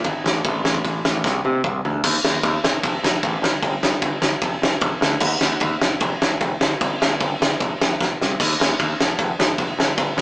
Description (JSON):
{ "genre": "punk rock", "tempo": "151 BPM", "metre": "4/4", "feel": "straight", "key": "unclear", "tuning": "A4 = 439 Hz", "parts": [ { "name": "growling picked electric bass", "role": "bass", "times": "0.0-10.2 s", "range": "F1 to C3", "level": "-24 LUFS", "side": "equal", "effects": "overdrive" }, { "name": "loose indie drum kit", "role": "drums", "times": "0.0-10.2 s", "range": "crash cymbal, kick drum, ride cymbal, snare drum, splash cymbal, toms", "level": "-19 LUFS", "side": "equal", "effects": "none" } ], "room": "light reverb", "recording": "rough rehearsal-room recording, small speaker sound", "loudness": "-18 LUFS", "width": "side -25 dB against mid", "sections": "0.0-2.0 A section; 2.0-10.2 B section", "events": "drum fill 1.2-2.0, 8.0-8.4", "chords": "none" }